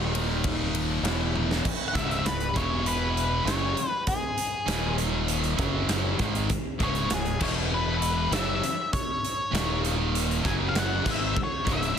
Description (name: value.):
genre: quiet-loud alternative rock.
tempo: 99 BPM.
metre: 4/4.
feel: straight.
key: C# minor.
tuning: A4 = 440 Hz.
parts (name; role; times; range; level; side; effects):
biting overdriven guitar; riff; 0.0-12.0 s; C#2 to G#3; -34 LUFS; equal; none.
high-gain distorted guitar; riff; 0.0-12.0 s; C#2 to G#3; -32 LUFS; right 10 dB; distortion.
thick fuzz guitar; riff; 0.0-12.0 s; C#2 to G#3; -32 LUFS; left 8 dB; distortion.
growling fingered electric bass; bass; 0.0-12.0 s; C#1 to G#1; -30 LUFS; equal; overdrive.
huge arena drum kit; drums; 0.1-12.0 s; crash cymbal, hi-hat, kick drum, ride cymbal, snare drum, toms; -29 LUFS; right 1 dB; none.
octave-fuzz lead guitar; melody; 1.9-12.0 s; G#4 to G#5; -30 LUFS; left 2 dB; distortion.
room: light reverb.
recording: dense, heavily limited modern master.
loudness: -24 LUFS.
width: side -8 dB against mid.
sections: 0.0-1.6 A section; 1.6-12.0 B section.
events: drum fill 1.3-1.6; lead electric guitar solo 1.6-12.0.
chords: 0.0 D#5; 1.0 E5; 1.6 C#5; 2.6 E5; 3.5 C#5; 4.7 D#5; 5.6 F#5; 6.2 C#5; 7.4 E5; 8.3 C#m; 9.5 D#5; 10.4 F#5; 11.1 C#m.